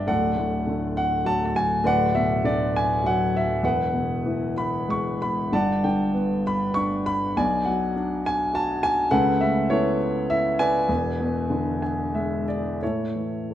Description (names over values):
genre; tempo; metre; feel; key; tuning
classical, lyrical solo piano; 87-106 BPM; 3/4; rubato; A major; A4 = 442 Hz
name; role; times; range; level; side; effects
dark grand piano; solo; 0.0-13.5 s; D1 to C#6; -21 LUFS; equal; none
room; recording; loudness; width
moderate recital hall reverb, RT60 1.6 s; none; -21 LUFS; side -11 dB against mid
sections
0.0-12.8 A section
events
grand piano fill 11.5-12.8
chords
0.1 D; 1.8 Bm/D; 3.6 Eadd9; 5.5 Gmaj7; 7.4 Bm; 9.1 Aadd9/C#; 10.9 E7; 12.8 A